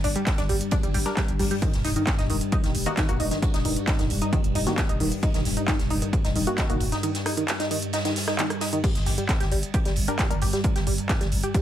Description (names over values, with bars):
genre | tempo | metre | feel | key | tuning
driving peak-time techno | 133 BPM | 4/4 | straight | G harmonic minor | A4 = 441 Hz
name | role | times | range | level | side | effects
tight sequenced synth | riff | 0.0-11.6 s | Eb3 to G4 | -29 LUFS | right 1 dB | chorus, phaser, cassette tape, sidechain pumping, dub echo
growling 808-style bass | bass | 0.0-11.4 s | Eb1 to G1 | -29 LUFS | equal | overdrive, sidechain pumping, low-pass filter
deep dark ambient pad | drone | 0.0-11.6 s | G2 to G3 | -30 LUFS | left 1 dB | chorus, built-in reverb, sidechain pumping
techno drum kit | drums | 0.0-11.6 s | crash cymbal, handclaps, hi-hat, rim click | -30 LUFS | right 1 dB | none
unplugged drum kit | drums | 0.0-11.6 s | hi-hat, ride cymbal, snare drum | -37 LUFS | right 1 dB | high-pass filter on cymbals, high-pass filter on hats, high-pass filter on snare, high-pass filter on room
electronic kick drum | drums | 0.3-11.6 s | none | -25 LUFS | equal | none
filtered dub chord stab | stabs | 1.1-6.8, 10.1-10.4 s | Eb3 to Bb4 | -33 LUFS | left 3 dB | phaser, sidechain pumping, dub echo
room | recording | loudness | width
light reverb, digital ambience | none | -22 LUFS | side -11 dB against mid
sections
0.0-11.6 A section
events
none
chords
0.0 G5; 1.6 N.C.